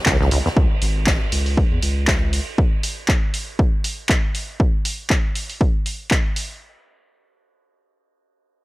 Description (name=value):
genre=acid house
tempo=119 BPM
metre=4/4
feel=swing 55% on 16ths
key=C# minor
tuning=A4 = 440 Hz
part: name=acid bass, saw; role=riff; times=0.1-0.5 s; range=C#2 to E2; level=-22 LUFS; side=equal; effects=analog chorus, sidechain pumping, tape echo
part: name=electronic kick drum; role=drums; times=0.1-6.2 s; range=none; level=-18 LUFS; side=equal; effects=none
part: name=punchy analog drum machine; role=drums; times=0.1-6.5 s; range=handclaps, hi-hat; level=-24 LUFS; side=equal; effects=none
part: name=soft-mallet drum kit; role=drums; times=0.1-2.5 s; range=ride cymbal, snare drum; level=-32 LUFS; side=right 2 dB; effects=sidechain pumping on cymbals, high-pass filter on cymbals, sidechain pumping on hats, high-pass filter on hats, high-pass filter on snare, high-pass filter on room
part: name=saturated sub bass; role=bass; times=0.2-2.4 s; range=G#1 to E2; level=-22 LUFS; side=equal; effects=sidechain pumping
room=little or no reverb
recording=none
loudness=-18 LUFS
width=side -20 dB against mid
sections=0.0-6.6 A section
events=none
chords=0.0 C#5